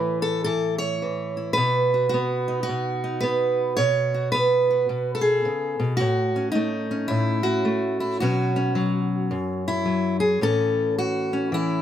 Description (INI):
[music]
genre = folk, solo fingerstyle acoustic guitar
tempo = 109 BPM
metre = 4/4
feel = swing 63% on 8ths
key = unclear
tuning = A4 = 443 Hz
[part]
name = fingerpicked steel-string acoustic guitar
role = solo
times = 0.0-11.8 s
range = F#2 to C#5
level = -21 LUFS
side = equal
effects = none
[sound]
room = moderate studio ambience, RT60 0.5 s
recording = none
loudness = -21 LUFS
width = side -10 dB against mid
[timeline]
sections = 0.0-10.4 A section; 10.4-11.8 B section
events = none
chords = 0.0 A; 1.6 B; 6.0 F#m/A; 8.2 Bsus2; 10.4 A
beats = 0.47 1.02 | 1.58 2.13 2.68 3.24 | 3.79 4.34 4.89 5.45 | 6.00 6.55 7.11 7.66 | 8.21 8.76 9.31 9.87 | 10.42 10.97 11.52